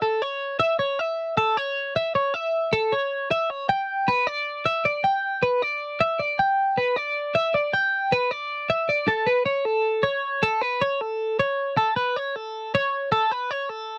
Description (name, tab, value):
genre	rock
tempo	312 BPM (eighths)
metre	7/8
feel	straight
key	unclear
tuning	A4 = 440 Hz
part	twelve-string electric guitar	solo	0.0-14.0 s	A4 to G5	-24 LUFS	equal	subtle chorus
room	little or no reverb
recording	dry, close 1970s-style studio recording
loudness	-24 LUFS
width	mono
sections	0.0-9.1 A section; 9.1-14.0 B section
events	none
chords	none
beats	0.04 0.23 0.42 0.61 0.81 | 1.00 1.19 1.39 1.58 1.77 1.97 2.16 | 2.35 2.54 2.74 2.93 3.12 3.31 3.51 | 3.70 3.89 4.08 4.28 4.47 4.66 4.86 | 5.05 5.24 5.43 5.62 5.82 6.01 6.20 | 6.39 6.59 6.78 6.97 7.16 7.36 7.55 | 7.74 7.93 8.12 8.32 8.51 8.70 8.89 | 9.09 9.28 9.47 9.66 9.86 10.05 10.24 | 10.43 10.62 10.82 11.01 11.20 11.39 11.59 | 11.78 11.97 12.16 12.36 12.55 12.74 12.93 | 13.12 13.32 13.51 13.70 13.90